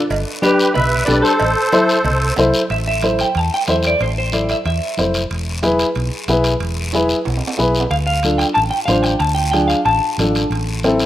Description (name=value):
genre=latin, cumbia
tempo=184 BPM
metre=4/4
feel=straight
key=A harmonic minor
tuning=A4 = 440 Hz
part: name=hollow-body short-scale fingered electric bass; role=bass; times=0.1-11.0 s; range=E1 to E2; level=-21 LUFS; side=equal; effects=none
part: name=congas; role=percussion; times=0.1-11.0 s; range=none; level=-27 LUFS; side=right 2 dB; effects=none
part: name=cowbell and timbales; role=percussion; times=0.1-11.1 s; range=none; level=-29 LUFS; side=right 5 dB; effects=none
part: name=guiro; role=percussion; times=0.1-11.1 s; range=none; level=-26 LUFS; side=left 3 dB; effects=none
part: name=musette accordion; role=melody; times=0.4-2.3 s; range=G4 to E5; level=-19 LUFS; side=right 1 dB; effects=tape echo
part: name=semi-hollow electric guitar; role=second line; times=0.4-5.1, 7.9-10.3 s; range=G4 to A5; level=-19 LUFS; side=equal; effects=none
part: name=dark upright piano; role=accompaniment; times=0.4-11.1 s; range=C4 to D5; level=-18 LUFS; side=left 1 dB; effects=none
room=moderate lush hall reverb, RT60 3.2 s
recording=rough home demo mix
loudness=-14 LUFS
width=side -13 dB against mid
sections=0.0-2.7 A section; 2.7-11.1 B section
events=clean electric guitar solo 2.7-11.1; drum fill 6.9-7.9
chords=0.1 G; 1.4 Am; 5.3 E; 7.9 Dm; 10.5 Am